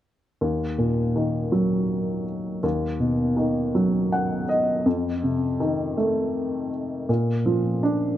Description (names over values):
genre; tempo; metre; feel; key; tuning
pop; 54 BPM (dotted quarters); 6/8; straight; Eb minor; A4 = 441 Hz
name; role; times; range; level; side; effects
warm upright piano; accompaniment; 0.4-8.2 s; Eb2 to F#5; -21 LUFS; equal; none
room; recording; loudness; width
moderate plate reverb, RT60 2.7 s; none; -22 LUFS; side -12 dB against mid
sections
0.4-8.2 A section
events
upright piano fill 3.7-4.9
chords
0.4 Ebm; 2.6 B/D#; 4.9 F7; 7.1 Bb